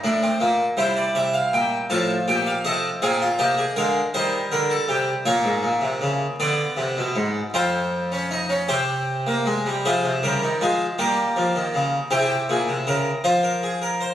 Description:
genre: classical, baroque-style 4-part fugue for harpsichord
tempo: 53 BPM (dotted quarters)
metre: 6/8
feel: straight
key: F minor from 5.3 s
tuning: A4 = 442 Hz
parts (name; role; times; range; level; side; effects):
- harpsichord; solo; 0.0-14.1 s; F2 to A5; -20 LUFS; equal; none
room: wet recital hall reverb, RT60 1.4 s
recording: recorded on a phone in the room, studio reverb, compression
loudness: -20 LUFS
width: side -11 dB against mid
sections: 0.0-9.8 A section; 9.8-14.1 B section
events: none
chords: 0.0 N.C.; 0.8 C7; 1.9 F/A; 3.0 Bb7; 4.1 Eb; 5.3 Bbm9/Ab; 6.4 Bdim7; 7.5 Csus4/F; 8.7 C5; 9.8 Fm/C; 11.0 Gm7b5; 12.1 C7; 13.2 Fm

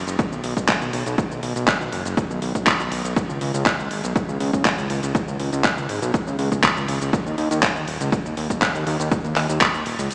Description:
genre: progressive house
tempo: 121 BPM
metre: 4/4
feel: straight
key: unclear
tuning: A4 = 439 Hz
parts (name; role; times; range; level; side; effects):
- fat analog bass; bass; 0.0-10.1 s; D#1 to D#2; -24 LUFS; equal; sidechain pumping
- pop drum kit; drums; 0.1-10.1 s; handclaps, hi-hat, shaker; -23 LUFS; equal; overdrive
- electronic kick drum; drums; 0.2-9.7 s; none; -23 LUFS; equal; overdrive
room: moderate huge ambient reverb, RT60 4.7 s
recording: played on a big sound system in a bare room, stone room reverb, small speaker sound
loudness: -19 LUFS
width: side -38 dB against mid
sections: 0.0-10.1 A section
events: none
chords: none

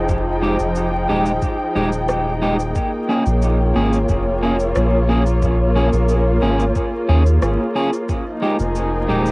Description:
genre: ambient dub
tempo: 90 BPM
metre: 4/4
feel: straight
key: unclear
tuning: A4 = 439 Hz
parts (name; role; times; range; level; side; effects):
- muted studio string section; sustained chords; 0.0-9.3 s; F3 to G5; -20 LUFS; equal; cassette tape
- soft dub sub bass; bass; 0.0-9.3 s; Eb1 to Eb2; -18 LUFS; equal; tube saturation
- electronic cabasa and rim click; drums; 0.1-9.3 s; none; -28 LUFS; equal; cassette tape, dub echo
- electronic kick drum; drums; 0.1-8.2 s; none; -23 LUFS; equal; cassette tape
- electric guitar at the edge of break-up; stabs; 0.4-9.3 s; Ab3 to Ab4; -21 LUFS; right 1 dB; vibrato effect, cassette tape, dub echo
room: light reverb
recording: home recording on cassette, vinyl crackle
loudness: -15 LUFS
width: side -26 dB against mid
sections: 0.0-9.3 A section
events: none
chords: 0.0 Fm9; 2.8 Bbm7; 8.1 Fm9

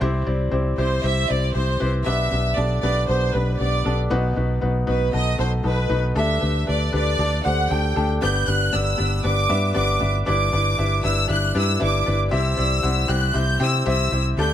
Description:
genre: piano-driven pop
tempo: 117 BPM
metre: 4/4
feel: straight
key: unclear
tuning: A4 = 440 Hz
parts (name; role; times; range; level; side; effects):
- felt-muted upright piano; accompaniment; 0.0-14.5 s; G2 to G5; -24 LUFS; left 2 dB; none
- vintage muted fingered electric bass; bass; 0.0-14.5 s; G1 to C3; -22 LUFS; equal; none
- clear studio violin section; melody; 0.8-14.5 s; B4 to G6; -24 LUFS; right 1 dB; none
room: studio ambience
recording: none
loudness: -19 LUFS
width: side -11 dB against mid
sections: 0.0-8.2 A section; 8.2-14.5 B section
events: none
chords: 0.0 C; 2.1 G/B; 4.1 B; 6.2 Dsus4; 8.2 Em7/G; 12.3 C

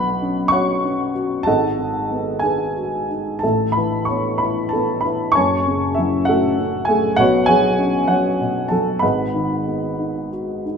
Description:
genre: classical, lyrical solo piano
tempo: 59-67 BPM (dotted quarters)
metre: 6/8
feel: rubato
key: unclear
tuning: A4 = 440 Hz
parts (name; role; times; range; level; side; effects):
- dark upright piano; solo; 0.0-10.8 s; F#1 to C#6; -17 LUFS; equal; none
room: moderate scoring stage reverb, RT60 1.6 s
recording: minimal, uncompressed stereo recording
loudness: -17 LUFS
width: side -6 dB against mid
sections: 0.0-10.8 A section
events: none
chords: 0.0 Bsus2; 1.5 G#m7; 3.4 Asus2; 5.4 F#madd9; 7.2 Bsus2; 9.0 G#m7

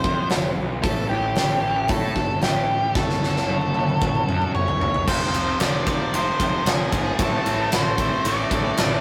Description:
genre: quiet-loud alternative rock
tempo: 113 BPM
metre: 4/4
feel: straight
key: unclear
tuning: A4 = 440 Hz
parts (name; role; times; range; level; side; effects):
- octave-fuzz lead guitar; melody; 0.0-9.0 s; G4 to D5; -27 LUFS; equal; distortion
- twelve-string electric guitar; arpeggios; 0.0-9.0 s; F2 to A4; -35 LUFS; equal; none
- fuzz picked electric bass; bass; 0.0-9.0 s; F1 to A2; -29 LUFS; equal; overdrive
- huge arena drum kit; drums; 0.0-8.9 s; crash cymbal, hi-hat, kick drum, ride cymbal, snare drum, toms; -25 LUFS; equal; none
- tight distorted guitar; riff; 5.1-9.0 s; F2 to A3; -29 LUFS; equal; distortion
room: moderate stone room reverb, RT60 1.1 s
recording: rough rehearsal-room recording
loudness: -22 LUFS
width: mono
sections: 0.0-5.1 A section; 5.1-9.0 B section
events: drum fill 3.0-5.1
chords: 0.0 F; 0.8 A; 3.0 F#m; 5.1 Fm; 7.2 Am

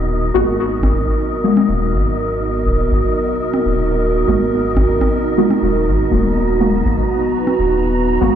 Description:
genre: dub techno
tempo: 122 BPM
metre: 4/4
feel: swing 53% on 16ths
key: G# minor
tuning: A4 = 440 Hz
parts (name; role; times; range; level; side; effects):
- dark analog pad; sustained chords; 0.0-8.4 s; B3 to B4; -18 LUFS; right 2 dB; chorus
- soft dub sub bass; bass; 0.0-8.4 s; D#1 to G#1; -19 LUFS; equal; none
- wind-like tuned noise texture; texture; 0.0-8.4 s; D#4 to A#5; -24 LUFS; right 2 dB; built-in reverb
- deep mellow chord stab; stabs; 0.3-8.4 s; G#3 to F#4; -18 LUFS; left 2 dB; chorus, phaser, dub echo
- congas; percussion; 0.8-7.6 s; none; -24 LUFS; right 3 dB; dub echo
room: moderate echo chamber reverb, RT60 1.4 s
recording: played on a big sound system in a bare room, stone room reverb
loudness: -14 LUFS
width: side -9 dB against mid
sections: 0.0-8.4 A section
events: filter sweep on synth stab 0.0-8.4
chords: 0.0 G#m9

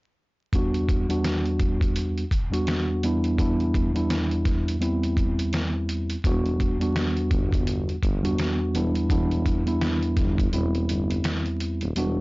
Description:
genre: hip hop, boom-bap hip-hop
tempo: 84 BPM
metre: 4/4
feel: swing 59% on 16ths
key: E minor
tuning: A4 = 440 Hz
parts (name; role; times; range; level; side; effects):
- mellow tine electric piano; accompaniment; 0.5-12.2 s; E2 to F#4; -24 LUFS; equal; medium stereo tremolo, cassette tape
- trip hop sampler-style drum kit; drums; 0.5-12.2 s; hi-hat, kick drum, snare drum; -26 LUFS; equal; none
- dark tuba; bass; 6.2-12.2 s; D#1 to G1; -29 LUFS; equal; tube saturation
room: light reverb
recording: blown-out, overdriven recording, vinyl crackle, overdrive, nothing above 7.5 kHz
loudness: -22 LUFS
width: side -23 dB against mid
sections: 0.5-12.0 A section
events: break 10.5-12.0; kick muted 12.0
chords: 0.5 Em9; 3.0 Em7; 4.8 Cmaj7/E; 6.2 Em9; 8.7 Em7; 10.5 Cmaj7

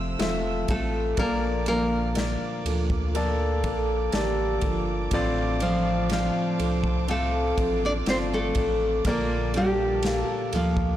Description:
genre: pop ballad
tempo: 61 BPM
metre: 4/4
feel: straight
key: unclear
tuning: A4 = 439 Hz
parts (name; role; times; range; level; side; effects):
- nylon-string guitar; melody; 0.0-11.0 s; F3 to D5; -26 LUFS; equal; ping-pong delay
- warm concert grand piano; accompaniment; 0.0-11.0 s; A2 to F5; -30 LUFS; left 3 dB; none
- warm chamber string section; sustained chords; 0.0-11.0 s; F3 to E6; -37 LUFS; right 2 dB; none
- picked steel-string acoustic guitar; arpeggios; 0.0-11.0 s; A2 to A4; -34 LUFS; right 5 dB; none
- warm sub bass; bass; 0.0-11.0 s; E1 to D2; -29 LUFS; equal; none
- natural country drum kit; drums; 0.2-11.0 s; kick drum, ride cymbal, snare drum; -32 LUFS; equal; none
- mellow French horn section; second line; 2.7-5.4 s; F4 to A4; -31 LUFS; right 3 dB; none
room: light reverb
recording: blown-out, overdriven recording, overdrive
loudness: -23 LUFS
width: side -12 dB against mid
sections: 0.0-11.0 A section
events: none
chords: 0.0 Fmaj7; 1.2 Bbmaj7; 5.1 Dm7/A; 9.1 Bbmaj7

